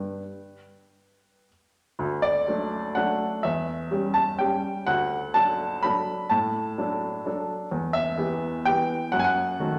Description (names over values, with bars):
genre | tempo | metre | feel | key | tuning
classical, piano waltz | 107-134 BPM | 3/4 | rubato | D major | A4 = 440 Hz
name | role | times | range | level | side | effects
warm upright piano | solo | 0.0-9.8 s | D2 to B5 | -26 LUFS | equal | none
room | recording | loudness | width
wet recital hall reverb, RT60 1.4 s | none | -26 LUFS | mono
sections
0.0-2.0 A section; 2.0-9.8 B section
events
none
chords
0.0 G; 2.0 D; 3.4 C#dim/E; 4.9 D; 7.7 Em; 9.1 D#dim/F#